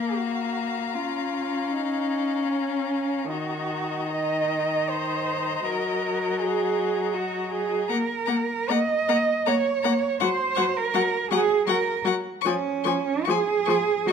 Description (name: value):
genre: classical, slow romantic movement for string quartet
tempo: 70-82 BPM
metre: 3/4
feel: rubato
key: unclear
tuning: A4 = 441 Hz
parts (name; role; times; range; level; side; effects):
- warm violin; melody; 0.0-14.1 s; Bb5 to Db6; -33 LUFS; left 13 dB; none
- rich violin; second line; 0.0-13.8 s; Eb5 to Ab5; -33 LUFS; left 9 dB; none
- rich viola; accompaniment; 0.0-14.1 s; Eb3 to Db4; -27 LUFS; left 3 dB; none
- rich cello; bass; 0.0-14.1 s; Db4 to Eb5; -25 LUFS; right 6 dB; none
room: moderate recital hall reverb, RT60 1.5 s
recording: none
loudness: -22 LUFS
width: side -7 dB against mid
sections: 0.0-14.1 A section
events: none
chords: 0.0 Bb5; 0.9 Bbm/Db; 3.3 Ebm; 5.7 Ebm/Gb; 7.9 Gb/Bb; 10.2 Gb; 12.4 Db/F